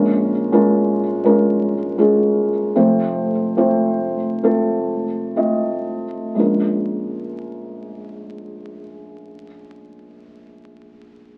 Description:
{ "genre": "folk", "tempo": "56-85 BPM", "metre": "4/4", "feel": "straight", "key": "Bb minor", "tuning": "A4 = 445 Hz", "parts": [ { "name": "felt-muted upright piano", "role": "accompaniment", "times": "0.0-11.4 s", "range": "F1 to Eb5", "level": "-19 LUFS", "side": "equal", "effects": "none" } ], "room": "wet studio reverb, RT60 0.9 s", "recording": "very old 78 rpm record, vinyl crackle", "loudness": "-18 LUFS", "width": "mono", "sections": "0.0-6.4 A section; 6.4-10.6 B section", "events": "slowing down 0.0-6.4", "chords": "0.0 Bbm7; 2.8 F; 6.4 Bbm7" }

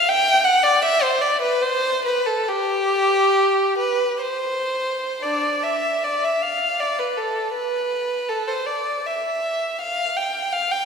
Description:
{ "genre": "classical, free, expressive piece for unaccompanied violin", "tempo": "52-86 BPM", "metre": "3/4", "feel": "rubato", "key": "D dorian", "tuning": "A4 = 440 Hz", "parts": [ { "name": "rich violin", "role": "solo", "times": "0.0-10.9 s", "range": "D4 to G5", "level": "-19 LUFS", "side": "equal", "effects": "none" } ], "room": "wet concert hall reverb, RT60 2.5 s", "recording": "recorded in a church or concert hall", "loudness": "-19 LUFS", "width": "side -6 dB against mid", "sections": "0.0-5.2 A section; 5.2-10.9 B section", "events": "none", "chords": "none" }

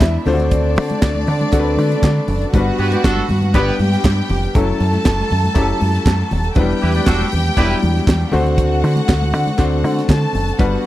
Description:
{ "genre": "disco", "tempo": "119 BPM", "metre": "4/4", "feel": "straight", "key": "unclear", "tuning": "A4 = 440 Hz", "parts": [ { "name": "dark studio string section", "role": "second line", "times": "0.0-10.9 s", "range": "D4 to A5", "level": "-22 LUFS", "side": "right 1 dB", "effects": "tape echo" }, { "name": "clear concert grand piano", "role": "accompaniment", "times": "0.0-10.9 s", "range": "F#3 to D5", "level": "-21 LUFS", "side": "left 3 dB", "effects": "none" }, { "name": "deep dub fingered electric bass", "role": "bass", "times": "0.0-10.8 s", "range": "D#1 to D3", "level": "-18 LUFS", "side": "equal", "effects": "none" }, { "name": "tight funk drum kit", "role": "drums", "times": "0.0-10.7 s", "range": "handclaps, hi-hat, kick drum, snare drum", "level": "-15 LUFS", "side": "right 1 dB", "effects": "none" }, { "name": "congas", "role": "percussion", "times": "0.0-10.7 s", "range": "none", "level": "-27 LUFS", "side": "left 3 dB", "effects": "none" }, { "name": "group handclap", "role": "percussion", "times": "0.0-10.2 s", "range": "none", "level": "-35 LUFS", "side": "right 4 dB", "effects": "none" }, { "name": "clear horn section", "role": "stabs", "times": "2.8-3.7, 6.8-7.8 s", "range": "B3 to D5", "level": "-21 LUFS", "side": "right 2 dB", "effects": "none" } ], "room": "studio reverb", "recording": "dry, close 1970s-style studio recording", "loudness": "-14 LUFS", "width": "side -14 dB against mid", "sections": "0.0-10.9 A section", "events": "none", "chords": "0.3 D7; 2.5 Gmaj7; 4.5 F#m7; 6.6 Em7; 8.3 D7" }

